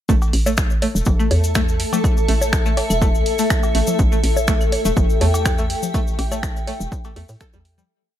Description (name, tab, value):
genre	minimal techno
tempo	123 BPM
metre	4/4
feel	straight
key	unclear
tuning	A4 = 442 Hz
part	string-like resonator pluck	riff	0.1-7.8 s	G3 to A4	-26 LUFS	left 1 dB	chorus, phaser, sidechain pumping, ping-pong delay
part	hollow knocking FM bass	bass	0.1-7.8 s	E1 to A2	-21 LUFS	equal	sidechain pumping
part	electronic kick drum	drums	0.1-7.5 s	none	-19 LUFS	equal	overdrive
part	cabasa	percussion	0.1-7.9 s	none	-31 LUFS	left 5 dB	none
part	granular cloud pad	texture	1.0-7.9 s	A4 to A5	-24 LUFS	left 1 dB	built-in reverb, sidechain pumping
part	cowbell, claves, bongos and congas	percussion	0.2-7.9 s	none	-27 LUFS	left 3 dB	overdrive, digital delay
part	punchy analog drum machine	drums	0.3-7.8 s	finger snaps, hi-hat	-25 LUFS	right 1 dB	overdrive
room	light reverb, digital ambience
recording	none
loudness	-16 LUFS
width	side -11 dB against mid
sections	0.1-7.9 drop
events	drop 0.1-7.9; fade-out 5.3-7.9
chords	0.1 A5